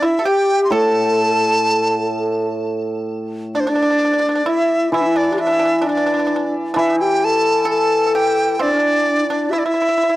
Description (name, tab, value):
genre	chinese traditional, Chinese chamber ensemble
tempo	65 BPM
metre	2/4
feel	straight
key	unclear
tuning	A4 = 442 Hz
part	mellow dizi	melody	0.0-10.2 s	C5 to C6	-18 LUFS	right 1 dB	plate reverb, tape echo
part	breathy hollow low xiao	second line	0.0-10.2 s	D4 to A4	-19 LUFS	left 2 dB	plate reverb
part	pipa	second line	0.0-10.2 s	D4 to A4	-25 LUFS	right 3 dB	plate reverb
part	hammered dulcimer	accompaniment	0.7-9.5 s	A2 to E3	-23 LUFS	right 1 dB	plate reverb
room	wet small room reverb, RT60 0.5 s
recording	dry, gritty hardware recording, transformer saturation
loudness	-15 LUFS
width	side -16 dB against mid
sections	0.0-3.1 A section; 3.1-10.2 B section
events	none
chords	none